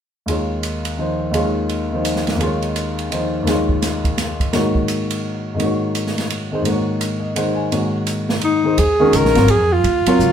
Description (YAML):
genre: modal jazz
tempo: 169 BPM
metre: 3/4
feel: swing 63% on 8ths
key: Eb dorian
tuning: A4 = 440 Hz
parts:
  - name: warm concert grand piano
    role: accompaniment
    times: 0.3-10.3 s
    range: Eb2 to Ab5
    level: -19 LUFS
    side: equal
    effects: none
  - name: open jazz drum kit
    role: drums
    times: 0.3-10.3 s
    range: hi-hat, kick drum, ride cymbal, snare drum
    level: -24 LUFS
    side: right 2 dB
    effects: none
  - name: warm alto saxophone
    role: melody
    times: 8.4-10.3 s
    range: Eb4 to Bb4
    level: -15 LUFS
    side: equal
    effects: none
  - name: upright bass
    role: bass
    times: 8.8-10.3 s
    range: Ab1 to F2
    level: -18 LUFS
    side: equal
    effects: none
room: moderate studio reverb, RT60 0.9 s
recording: band playing live in one room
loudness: -16 LUFS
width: side -8 dB against mid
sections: 0.3-8.8 A section; 8.8-10.3 B section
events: none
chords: 0.3 Eb9sus4; 4.5 Ab9sus4; 8.8 Eb9sus4